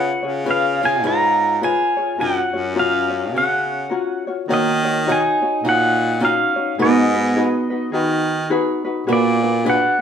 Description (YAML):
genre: Hawaiian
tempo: 104 BPM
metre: 4/4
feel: swing 62% on 8ths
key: F# major, Eb minor from 4.5 s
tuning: A4 = 440 Hz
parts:
  - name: pedal steel guitar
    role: melody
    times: 0.0-10.0 s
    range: D5 to A#5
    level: -20 LUFS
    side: equal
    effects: none
  - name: picked acoustic archtop guitar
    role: second line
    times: 0.0-10.0 s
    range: Bb3 to E#4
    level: -24 LUFS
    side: right 5 dB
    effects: none
  - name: ukulele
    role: accompaniment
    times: 0.0-10.0 s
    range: D4 to C#5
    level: -22 LUFS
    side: left 4 dB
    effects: none
  - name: clear baritone saxophone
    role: bass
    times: 0.0-9.8 s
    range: F#2 to Eb3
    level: -22 LUFS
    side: equal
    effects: none
room: wet studio reverb, RT60 0.7 s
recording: band playing live in one room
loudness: -16 LUFS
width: side -8 dB against mid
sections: 0.0-4.5 A section; 4.5-10.0 B section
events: none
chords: 0.0 C#7; 2.2 F#maj7; 4.5 Ebm7; 6.8 Abm7; 9.1 Bb7b9b13